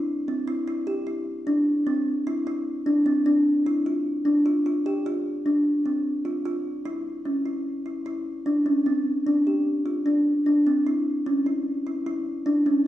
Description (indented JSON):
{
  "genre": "contemporary instrumental, contemporary",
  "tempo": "150 BPM",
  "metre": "5/4",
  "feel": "straight",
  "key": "unclear",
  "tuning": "A4 = 440 Hz",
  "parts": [
    { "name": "kalimba", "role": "solo", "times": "0.0-12.8 s", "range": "C4 to G4", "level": "-22 LUFS", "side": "equal", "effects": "none" }
  ],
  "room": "wet recital hall reverb, RT60 1.4 s",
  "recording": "dark, warm production, faint mains hum",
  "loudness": "-22 LUFS",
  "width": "side -13 dB against mid",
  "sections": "0.0-6.8 A section; 6.8-12.9 B section",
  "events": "none",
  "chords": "none"
}